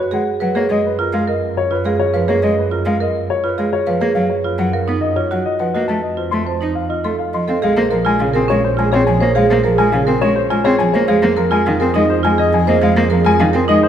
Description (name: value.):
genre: classical, minimalist pattern music.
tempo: 104 BPM.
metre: 3/4.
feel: straight.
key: unclear.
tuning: A4 = 439 Hz.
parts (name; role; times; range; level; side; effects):
dark baby grand piano; melody; 0.0-13.9 s; Ab4 to C6; -19 LUFS; left 6 dB; none.
marimba with medium hard mallets; arpeggios; 0.0-13.9 s; Db4 to Eb5; -19 LUFS; right 6 dB; none.
warm double bass; bass; 0.0-13.9 s; Bb1 to F#2; -22 LUFS; right 2 dB; none.
warm cello; accompaniment; 0.1-13.8 s; Db3 to Eb4; -19 LUFS; equal; none.
mellow wooden-headed alto flute; second line; 7.6-13.9 s; Ab4; -25 LUFS; right 5 dB; none.
room: moderate scoring stage reverb, RT60 1.9 s.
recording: none.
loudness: -14 LUFS.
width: side -9 dB against mid.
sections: 0.0-7.6 A section; 7.6-13.9 B section.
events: none.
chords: 0.0 G#m9/F#; 0.7 C#13/F#; 4.2 Bmaj9/F#; 5.9 F7; 7.6 Bbm7; 11.1 Fm7.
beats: 0.12 | 0.70 1.27 1.85 | 2.43 3.00 3.58 | 4.16 4.73 5.31 | 5.89 6.46 7.04 | 7.62 8.20 8.77 | 9.35 9.93 10.50 | 11.08 11.66 12.23 | 12.81 13.39.